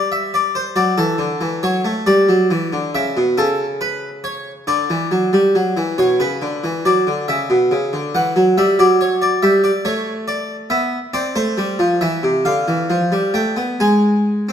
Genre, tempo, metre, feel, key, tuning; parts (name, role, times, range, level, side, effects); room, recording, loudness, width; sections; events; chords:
classical, baroque-style two-part invention for harpsichord; 46 BPM (dotted quarters); 6/8; straight; A4 = 440 Hz
harpsichord; solo; 0.0-14.5 s; B2 to G#5; -15 LUFS; equal
moderate recital hall reverb, RT60 1.8 s; minimal, uncompressed stereo recording; -15 LUFS; side -8 dB against mid
0.0-6.0 A section; 6.0-14.5 B section
0.0 G5; 0.8 D; 2.1 Em7; 3.4 A/C#; 4.7 D; 6.0 Bmadd11; 8.6 G5; 9.9 Aadd9; 11.1 Am; 12.5 Bdim/D; 13.8 N.C.